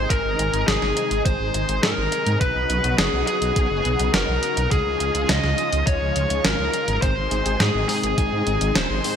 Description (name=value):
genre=synthwave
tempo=104 BPM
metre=4/4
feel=straight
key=Ab major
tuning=A4 = 440 Hz
part: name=bluesy overdriven lead guitar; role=melody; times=0.0-9.2 s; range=Ab4 to Eb5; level=-23 LUFS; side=left 2 dB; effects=distortion, digital delay
part: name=analog string pad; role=sustained chords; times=0.0-9.2 s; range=C3 to Ab4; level=-28 LUFS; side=equal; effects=ensemble chorus, sidechain pumping
part: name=dark detuned saw bass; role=bass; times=0.0-9.0 s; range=Eb1 to Ab2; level=-25 LUFS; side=equal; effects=sidechain pumping
part: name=clean 12-bit digital drum machine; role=drums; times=0.1-9.2 s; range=hi-hat, snare drum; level=-24 LUFS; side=right 1 dB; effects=gated reverb
part: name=electronic kick drum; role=drums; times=0.1-8.3 s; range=none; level=-22 LUFS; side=equal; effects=none
part: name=tine electric piano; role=stabs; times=7.0-9.2 s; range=Ab2 to Ab4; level=-28 LUFS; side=left 3 dB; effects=lush chorus
room=light reverb, digital ambience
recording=bright 1980s-style digital production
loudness=-19 LUFS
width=side -8 dB against mid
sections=0.0-9.2 A section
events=none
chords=0.0 Ab; 2.4 Badd9; 4.7 Dbadd9; 7.0 Ab